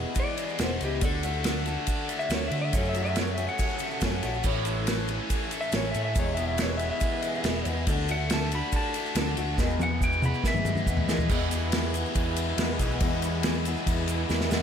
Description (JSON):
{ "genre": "folk rock and heartland rock", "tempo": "140 BPM", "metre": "4/4", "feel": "straight", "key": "unclear", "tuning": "A4 = 439 Hz", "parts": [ { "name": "picked acoustic archtop guitar", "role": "accompaniment", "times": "0.0-14.6 s", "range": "E2 to A4", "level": "-34 LUFS", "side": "left 6 dB", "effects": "slapback echo" }, { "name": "mellow tonewheel organ", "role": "sustained chords", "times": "0.0-14.6 s", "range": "B3 to B4", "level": "-39 LUFS", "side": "right 1 dB", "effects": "slow rotary speaker, overdrive, chorus vibrato" }, { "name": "biting overdriven guitar", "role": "riff", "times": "0.0-14.6 s", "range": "E2 to E4", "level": "-34 LUFS", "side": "equal", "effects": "slapback echo" }, { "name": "picked electric bass", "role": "bass", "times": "0.0-14.6 s", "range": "E1 to E3", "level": "-31 LUFS", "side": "right 1 dB", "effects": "none" }, { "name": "electric slide guitar", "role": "melody", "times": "0.2-11.3 s", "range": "G4 to B5", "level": "-33 LUFS", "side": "left 1 dB", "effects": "tape echo" }, { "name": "unplugged drum kit", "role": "drums", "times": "0.2-14.6 s", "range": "crash cymbal, kick drum, ride cymbal, snare drum, toms", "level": "-28 LUFS", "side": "equal", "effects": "none" }, { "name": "tube shaker", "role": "percussion", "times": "0.2-14.6 s", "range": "none", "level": "-45 LUFS", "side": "right 9 dB", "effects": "none" } ], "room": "moderate scoring stage reverb, RT60 1.5 s, small room ambience", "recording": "big arena sound", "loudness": "-25 LUFS", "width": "side -8 dB against mid", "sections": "0.0-11.3 A section; 11.3-14.6 B section", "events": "electric slide guitar solo 0.0-11.3; drum fill 9.6-11.3, 14.3-14.6", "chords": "0.0 E; 1.0 D; 2.7 F#m; 4.5 A; 6.2 E; 7.9 D; 9.6 E" }